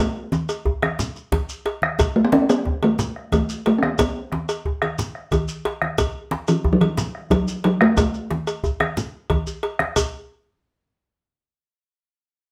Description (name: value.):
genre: west african traditional, West African drum ensemble.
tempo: 120 BPM (dotted quarters).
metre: 12/8.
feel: straight.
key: A major pentatonic.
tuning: A4 = 440 Hz.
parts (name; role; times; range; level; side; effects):
talking drum; melody; 0.0-9.6 s; E3 to C#4; -21 LUFS; equal; plate reverb.
djembe; percussion; 0.2-10.1 s; none; -30 LUFS; equal; none.
congas; percussion; 0.3-10.1 s; none; -30 LUFS; equal; none.
shekere; percussion; 0.3-10.1 s; none; -32 LUFS; equal; none.
cowbell; percussion; 0.5-10.1 s; none; -28 LUFS; equal; none.
bombo; percussion; 0.7-10.1 s; none; -26 LUFS; equal; none.
room: moderate studio reverb, RT60 0.6 s.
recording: none.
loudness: -22 LUFS.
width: mono.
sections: 0.0-10.0 A section; 10.0-11.9 B section.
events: drum fill 9.5-10.0.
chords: none.